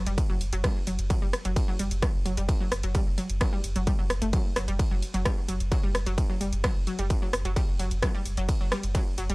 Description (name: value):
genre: driving peak-time techno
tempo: 130 BPM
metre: 4/4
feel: straight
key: unclear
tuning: A4 = 440 Hz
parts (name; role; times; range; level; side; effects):
- warm sub bass; bass; 0.0-9.3 s; F#1; -30 LUFS; equal; sidechain pumping, low-pass filter
- analog pluck; riff; 0.1-9.3 s; F#3 to A3; -33 LUFS; equal; chorus, sidechain pumping, analog delay
- techno drum kit; drums; 0.1-9.3 s; hi-hat, ride cymbal, rim click; -34 LUFS; equal; overdrive, sidechain pumping on hats, sidechain pumping on cymbals
- electronic kick drum; drums; 0.2-9.0 s; none; -26 LUFS; equal; distortion, overdrive
room: little or no reverb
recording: dry, gritty hardware recording, transformer saturation, cassette tape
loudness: -25 LUFS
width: side -25 dB against mid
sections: 0.0-9.3 A section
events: none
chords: none